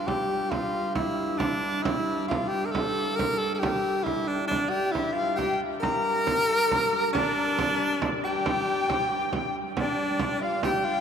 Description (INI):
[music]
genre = medieval dance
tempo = 136 BPM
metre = 3/4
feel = straight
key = G dorian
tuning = A4 = 435 Hz
[part]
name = clear tenor saxophone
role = melody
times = 0.0-11.0 s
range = D4 to Bb4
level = -26 LUFS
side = equal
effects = none
[part]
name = rich hurdy-gurdy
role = drone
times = 0.0-11.0 s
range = G2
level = -34 LUFS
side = left 2 dB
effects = stereo widening
[part]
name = frame drum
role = percussion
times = 0.1-10.8 s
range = none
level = -32 LUFS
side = right 4 dB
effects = none
[part]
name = bright tenor recorder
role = second line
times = 4.5-11.0 s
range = D5 to Bb5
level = -30 LUFS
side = left 2 dB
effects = none
[sound]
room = wet cathedral reverb, RT60 5.0 s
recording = in a vast, echoing space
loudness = -24 LUFS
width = side -7 dB against mid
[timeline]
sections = 0.0-9.8 A section; 9.8-11.0 B section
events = none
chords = none